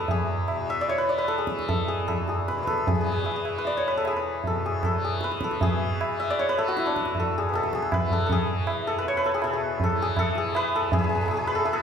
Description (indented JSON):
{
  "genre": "indian classical, Hindustani",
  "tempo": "149-163 BPM",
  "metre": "7/4",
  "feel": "straight",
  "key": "E raga khamaj",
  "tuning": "A4 = 442 Hz",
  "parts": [
    { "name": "santur", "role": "melody", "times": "0.0-11.8 s", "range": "D4 to E5", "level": "-26 LUFS", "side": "left 1 dB", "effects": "none" },
    { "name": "tanpura", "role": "drone", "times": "0.0-11.8 s", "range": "E2 to E3", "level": "-33 LUFS", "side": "left 2 dB", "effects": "none" },
    { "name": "tabla", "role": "percussion", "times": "0.1-11.8 s", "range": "none", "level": "-28 LUFS", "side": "right 1 dB", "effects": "none" }
  ],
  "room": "wet large studio reverb, RT60 1.3 s",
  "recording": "band playing live in one room",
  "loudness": "-23 LUFS",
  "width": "side -7 dB against mid",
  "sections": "0.0-5.6 A section; 5.6-11.8 B section",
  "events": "speeding up 0.0-11.8",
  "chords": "none"
}